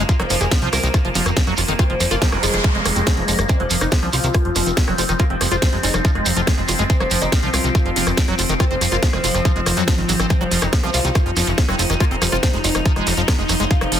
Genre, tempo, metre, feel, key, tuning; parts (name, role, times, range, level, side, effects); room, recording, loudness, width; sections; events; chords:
psychedelic trance; 141 BPM; 4/4; straight; F phrygian; A4 = 440 Hz
overtone-sweeping drone; sustained chords; 0.0-14.0 s; F3 to Eb4; -25 LUFS; left 1 dB; chorus, built-in reverb, sidechain pumping
liquid acid bass; riff; 0.0-14.0 s; Eb3 to F4; -25 LUFS; equal; chorus, auto-pan, sidechain pumping, dub echo
fat analog bass; bass; 0.0-14.0 s; F1 to F2; -22 LUFS; equal
oud; melody; 0.1-14.0 s; C3 to Bb4; -25 LUFS; left 1 dB; phaser, sidechain pumping, dub echo
electronic kick drum; drums; 0.1-13.8 s; -17 LUFS; equal
techno drum kit; drums; 0.1-14.0 s; hi-hat, rim click, snare drum; -24 LUFS; equal
shekere; percussion; 0.1-14.0 s; -26 LUFS; right 3 dB
noise sweep; sound effects; 2.1-3.5 s; -26 LUFS; right 2 dB
resonant blip pluck; second line; 4.9-6.4, 11.7-12.9 s; Ab3 to F4; -34 LUFS; left 2 dB
digital ambience; dense, heavily limited modern master; -15 LUFS; side -10 dB against mid
0.0-14.0 A section
noise sweep 2.1-3.5
0.0 F5